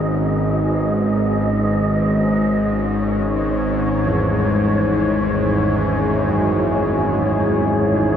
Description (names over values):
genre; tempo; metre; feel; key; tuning
dark ambient drone; free time; none; none; unclear; A4 = 440 Hz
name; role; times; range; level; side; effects
deep dark ambient pad; sustained chords; 0.0-8.2 s; G#3 to B4; -23 LUFS; equal; chorus, built-in reverb
old church bells; arpeggios; 0.0-8.2 s; E3 to D#4; -27 LUFS; right 2 dB; none
bowed-like drone; drone; 0.0-8.2 s; G#1 to G#2; -18 LUFS; equal; built-in reverb
wind-like tuned noise texture; texture; 0.0-8.2 s; C#5 to D#5; -25 LUFS; left 1 dB; built-in reverb
room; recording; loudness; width
wet huge ambient reverb, RT60 8.6 s; worn, warbling old tape, cassette tape, warbly pitch drift; -16 LUFS; side -9 dB against mid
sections
0.0-8.2 A section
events
none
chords
0.0 G#m; 2.4 C#m/G#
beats
free time